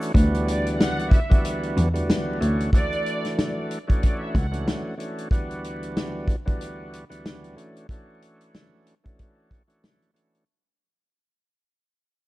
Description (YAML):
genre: hip hop, boom-bap hip-hop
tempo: 93 BPM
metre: 4/4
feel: swing 58% on 16ths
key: D major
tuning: A4 = 440 Hz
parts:
  - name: tonewheel organ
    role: accompaniment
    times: 0.0-10.4 s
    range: D2 to F#4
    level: -29 LUFS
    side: right 1 dB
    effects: overdrive, slow rotary speaker, cassette tape, high-pass filter, low-pass filter
  - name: warm soul drum kit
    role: drums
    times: 0.0-10.5 s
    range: hi-hat, kick drum, snare drum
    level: -21 LUFS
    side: equal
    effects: none
  - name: rich cello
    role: bass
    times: 0.2-4.6 s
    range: C#2 to E2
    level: -24 LUFS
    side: equal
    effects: none
  - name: warm studio violin section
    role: melody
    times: 0.5-4.8 s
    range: D5 to F#5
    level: -31 LUFS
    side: right 1 dB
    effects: high-pass filter, low-pass filter, digital delay
room: little or no reverb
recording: dark, warm production, vinyl crackle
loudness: -21 LUFS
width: side -18 dB against mid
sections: 0.1-10.5 A section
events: fade-out 0.1-10.5; break 5.3-10.5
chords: 0.1 Em7/D; 2.4 Dmaj7; 5.3 Em7/D; 7.6 Dmaj7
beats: | 0.15 0.80 1.44 2.08 | 2.73 3.38 4.02 4.67 | 5.31 5.96 6.60 7.25 | 7.89 8.54 9.18 9.83